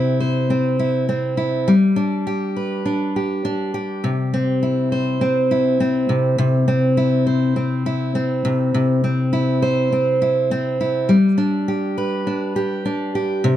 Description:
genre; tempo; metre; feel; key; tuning
pop; 102 BPM; 4/4; straight; C major; A4 = 436 Hz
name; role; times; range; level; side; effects
fingerpicked steel-string acoustic guitar; solo; 0.0-13.6 s; C3 to C5; -17 LUFS; equal; none
room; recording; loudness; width
light reverb; dark, warm production; -17 LUFS; side -12 dB against mid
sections
0.0-4.0 A section; 4.0-13.6 A section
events
none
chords
0.0 C; 1.7 G; 4.0 C; 11.1 G

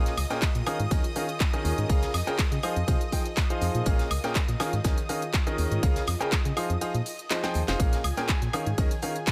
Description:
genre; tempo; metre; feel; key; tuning
piano house; 122 BPM; 4/4; swing 53% on 16ths; Bb minor; A4 = 440 Hz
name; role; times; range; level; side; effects
analog string pad; sustained chords; 0.0-9.3 s; Ab4 to Eb6; -41 LUFS; equal; ensemble chorus, sidechain pumping
clear concert grand piano; riff; 0.0-9.1 s; Bb2 to G5; -33 LUFS; equal; sidechain pumping, tape echo
organ-like FM bass; bass; 0.0-8.9 s; F1 to Db3; -31 LUFS; equal; sidechain pumping
granular cloud pad; texture; 0.0-9.3 s; F4 to Ab5; -43 LUFS; equal; none
house drum kit; drums; 0.1-9.3 s; handclaps, hi-hat, snare drum, woodblock; -34 LUFS; equal; none
huge arena drum kit; drums; 0.1-9.3 s; hi-hat, snare drum; -44 LUFS; equal; none
electronic kick drum; drums; 0.4-9.3 s; none; -28 LUFS; equal; none
room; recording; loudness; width
little or no reverb; none; -27 LUFS; mono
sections
0.0-9.3 A section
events
kick drops out 6.8-7.8; drum fill 7.3-7.8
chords
0.0 Bbm7; 0.9 Eb7sus4; 1.9 Bbm7/Db; 2.6 Fm7; 3.9 Bbm7; 4.8 Eb7sus4; 5.8 Bbm7/Db; 6.6 Fm7; 7.8 Bbm7; 8.8 Eb7sus4

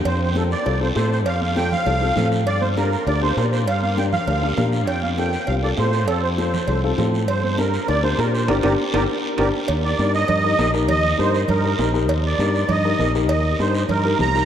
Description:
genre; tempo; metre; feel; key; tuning
latin, cumbia; 199 BPM; 4/4; straight; unclear; A4 = 439 Hz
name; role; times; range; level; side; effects
modern bright fingered electric bass; bass; 0.0-14.4 s; G1 to Bb2; -22 LUFS; equal; none
musette accordion; melody; 0.1-14.4 s; G4 to Bb5; -22 LUFS; right 3 dB; none
congas; percussion; 0.1-14.3 s; none; -29 LUFS; right 2 dB; none
cowbell and timbales; percussion; 0.1-14.0 s; none; -30 LUFS; right 4 dB; none
guiro; percussion; 0.1-14.4 s; none; -34 LUFS; right 4 dB; none
dark upright piano; accompaniment; 0.4-14.4 s; C4 to Bb4; -24 LUFS; left 4 dB; none
room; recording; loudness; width
wet cathedral reverb, RT60 7.0 s; in a vast, echoing space; -17 LUFS; side -9 dB against mid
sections
0.1-9.7 A section; 9.7-14.4 B section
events
band accent 8.5-9.7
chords
0.1 F; 2.5 Gm; 4.9 F; 7.3 Gm; 9.7 Eb

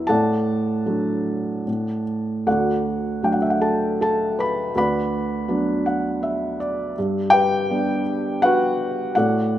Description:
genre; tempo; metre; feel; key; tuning
classical, lyrical solo piano; 74-83 BPM; 3/4; rubato; D major; A4 = 439 Hz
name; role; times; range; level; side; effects
felt-muted upright piano; solo; 0.0-9.6 s; D2 to B5; -19 LUFS; equal; none
room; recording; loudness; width
light reverb; none; -19 LUFS; side -12 dB against mid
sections
0.0-9.6 A section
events
felt piano fill 5.5-7.0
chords
0.1 D/A; 2.5 D; 4.8 Bm/D; 7.0 G

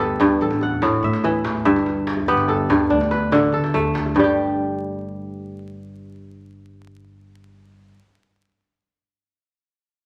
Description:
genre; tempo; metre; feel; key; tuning
west african traditional, West African string and xylophone music; 96 BPM (dotted quarters); 12/8; straight; unclear; A4 = 440 Hz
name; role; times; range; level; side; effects
kora; arpeggios; 0.0-8.0 s; G2 to F#5; -21 LUFS; equal; none
upright bass; bass; 0.0-7.9 s; G1 to D3; -31 LUFS; equal; none
djembe; percussion; 0.2-4.3 s; none; -32 LUFS; equal; none
room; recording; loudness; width
moderate large studio reverb, RT60 1.3 s; vinyl crackle; -20 LUFS; mono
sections
0.0-4.1 A section; 4.1-6.6 B section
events
none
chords
0.4 A5; 1.7 G; 2.9 D5; 4.1 N.C.

